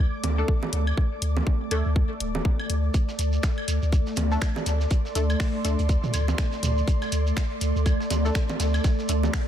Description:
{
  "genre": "minimal techno",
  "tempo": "122 BPM",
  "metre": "4/4",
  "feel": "swing 59% on 16ths",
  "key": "unclear",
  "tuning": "A4 = 440 Hz",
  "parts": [
    { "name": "punchy sub bass", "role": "bass", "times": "0.0-9.3 s", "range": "D1 to D2", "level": "-24 LUFS", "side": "equal", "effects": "tube saturation, sidechain pumping" },
    { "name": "ethereal airy pad", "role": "texture", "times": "0.0-9.5 s", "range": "A3 to D6", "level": "-30 LUFS", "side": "equal", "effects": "ensemble chorus, built-in reverb, sidechain pumping" },
    { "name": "punchy analog drum machine", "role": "drums", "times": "0.2-9.5 s", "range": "finger snaps, hi-hat", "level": "-34 LUFS", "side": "left 2 dB", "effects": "none" },
    { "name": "electronic bongos, woodblock and toms", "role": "percussion", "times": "0.2-9.3 s", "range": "none", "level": "-33 LUFS", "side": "right 3 dB", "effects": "digital delay" },
    { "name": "filtered dub chord stab", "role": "stabs", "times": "0.4-9.2 s", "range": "A3 to A4", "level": "-34 LUFS", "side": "left 2 dB", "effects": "ensemble chorus, digital delay" },
    { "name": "electronic kick drum", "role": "drums", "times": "0.5-9.5 s", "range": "none", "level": "-23 LUFS", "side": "equal", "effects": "none" },
    { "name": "dusty soul sampler-style drum kit", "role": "drums", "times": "2.9-9.5 s", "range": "hi-hat, snare drum", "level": "-43 LUFS", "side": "right 1 dB", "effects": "none" },
    { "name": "shekere", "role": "percussion", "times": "2.9-9.5 s", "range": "none", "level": "-39 LUFS", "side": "right 4 dB", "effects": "none" }
  ],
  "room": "light reverb",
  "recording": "none",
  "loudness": "-22 LUFS",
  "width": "side -10 dB against mid",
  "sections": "0.0-9.5 A section",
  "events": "none",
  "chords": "0.0 D5"
}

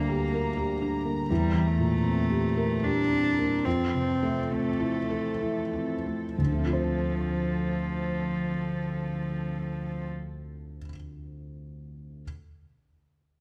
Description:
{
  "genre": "neoclassical piano and strings",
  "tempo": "60-83 BPM",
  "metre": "3/4",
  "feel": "rubato",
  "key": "D minor",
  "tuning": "A4 = 440 Hz",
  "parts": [
    { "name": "rich cello", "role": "second line", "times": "0.0-10.1 s", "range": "F3 to D4", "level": "-32 LUFS", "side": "equal", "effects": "none" },
    { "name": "felt-muted upright piano", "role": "accompaniment", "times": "0.0-12.2 s", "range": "D2 to C5", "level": "-31 LUFS", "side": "equal", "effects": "none" },
    { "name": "dark chamber string section", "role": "sustained chords", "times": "0.0-10.1 s", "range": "E3 to Bb5", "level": "-41 LUFS", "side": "equal", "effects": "none" }
  ],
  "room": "moderate recital hall reverb, RT60 1.7 s",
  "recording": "none",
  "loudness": "-28 LUFS",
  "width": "mono",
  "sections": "0.0-6.4 A section; 6.4-9.3 B section",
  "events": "slowing down 0.2-6.4",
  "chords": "0.0 Bb6/D; 1.3 C7/E; 3.6 Fmaj7; 6.4 Dm7"
}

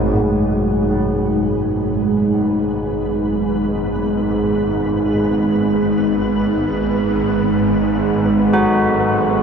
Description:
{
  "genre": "dark ambient drone",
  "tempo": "free time",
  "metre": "none",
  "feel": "none",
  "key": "G# minor",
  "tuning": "A4 = 440 Hz",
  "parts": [
    { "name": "deep dark ambient pad", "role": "sustained chords", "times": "0.0-9.4 s", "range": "G#3 to G#4", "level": "-17 LUFS", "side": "right 1 dB", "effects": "chorus, built-in reverb, shimmer reverb" },
    { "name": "carillon bells", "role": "arpeggios", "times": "0.0-9.4 s", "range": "F#3 to F#4", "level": "-22 LUFS", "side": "equal", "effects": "diffuse ambient delay, shimmer reverb" },
    { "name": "swarming drone", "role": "drone", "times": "0.0-9.4 s", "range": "G#1 to G#2", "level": "-25 LUFS", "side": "left 1 dB", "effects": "built-in reverb" },
    { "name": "flickering grainy texture", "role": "texture", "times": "1.1-9.4 s", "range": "B3 to B4", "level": "-27 LUFS", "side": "left 1 dB", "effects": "built-in reverb, shimmer reverb" }
  ],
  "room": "wet huge ambient reverb, RT60 8.1 s",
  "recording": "none",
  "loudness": "-15 LUFS",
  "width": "side -6 dB against mid",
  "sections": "0.3-9.4 A section",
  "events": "fade-in on synth drone 0.3-9.4; fade-in on synth texture 0.3-9.4",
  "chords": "0.3 G#m"
}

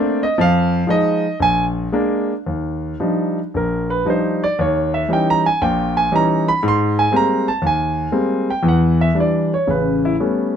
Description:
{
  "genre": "solo jazz",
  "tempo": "116 BPM",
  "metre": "4/4",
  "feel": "swing 68% on 8ths, uneven beats, rubato",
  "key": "unclear",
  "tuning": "A4 = 440 Hz",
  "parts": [
    { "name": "warm concert grand piano", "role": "solo", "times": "0.0-10.6 s", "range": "A1 to C6", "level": "-15 LUFS", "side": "equal", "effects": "none" }
  ],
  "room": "light reverb",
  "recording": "dark, warm production",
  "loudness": "-15 LUFS",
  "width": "side -8 dB against mid",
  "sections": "0.0-2.5 A section; 2.5-10.6 A section",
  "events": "grand piano solo 0.0-10.6",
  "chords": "0.4 Fm7; 1.4 Bb7; 2.5 Ebmaj9; 4.6 Eb7b9; 6.6 Abmaj9; 8.6 Em7; 9.7 A9"
}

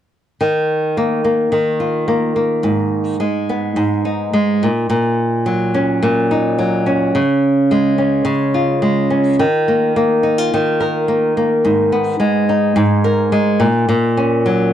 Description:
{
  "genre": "pop",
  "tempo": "107 BPM",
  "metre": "4/4",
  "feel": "straight",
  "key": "Eb minor",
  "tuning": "A4 = 440 Hz",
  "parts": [
    { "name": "flamenco guitar", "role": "accompaniment", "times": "0.4-14.7 s", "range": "Ab2 to Bb4", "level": "-13 LUFS", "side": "equal", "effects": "none" }
  ],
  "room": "light reverb",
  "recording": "dry, gritty hardware recording, cassette tape",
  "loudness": "-14 LUFS",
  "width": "side -10 dB against mid",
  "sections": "0.4-9.4 A section; 9.4-14.7 B section",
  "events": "none",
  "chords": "0.4 Ebsus2; 2.6 Abm; 4.6 Gb6/Bb; 7.2 Db; 9.4 Ebsus2; 11.6 Abmadd9; 13.6 Gb6/Bb"
}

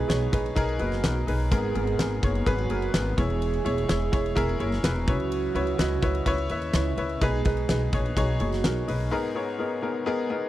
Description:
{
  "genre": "piano-driven pop",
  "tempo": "126 BPM",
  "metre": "4/4",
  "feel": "straight",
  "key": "unclear",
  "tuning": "A4 = 440 Hz",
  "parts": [
    { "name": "warm French horn section", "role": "second line", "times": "0.0-8.9 s", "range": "E3 to G#4", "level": "-31 LUFS", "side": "right 10 dB", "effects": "none" },
    { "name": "clear upright piano", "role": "accompaniment", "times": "0.0-10.5 s", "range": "G#2 to E5", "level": "-28 LUFS", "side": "left 3 dB", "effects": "none" },
    { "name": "upright bass", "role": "bass", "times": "0.0-9.1 s", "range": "E1 to D#2", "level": "-28 LUFS", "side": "equal", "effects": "none" },
    { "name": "huge arena drum kit", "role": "drums", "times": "0.1-9.1 s", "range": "hi-hat, kick drum, ride cymbal, snare drum", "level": "-28 LUFS", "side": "equal", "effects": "none" }
  ],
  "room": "small room ambience",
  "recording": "dry, close 1970s-style studio recording",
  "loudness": "-23 LUFS",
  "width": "side -14 dB against mid",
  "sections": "0.0-9.1 A section; 9.1-10.5 A section",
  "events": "none",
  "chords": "0.0 B6; 1.5 G#madd9; 3.2 E6; 5.1 C#m7; 7.2 B6; 9.1 G#madd9"
}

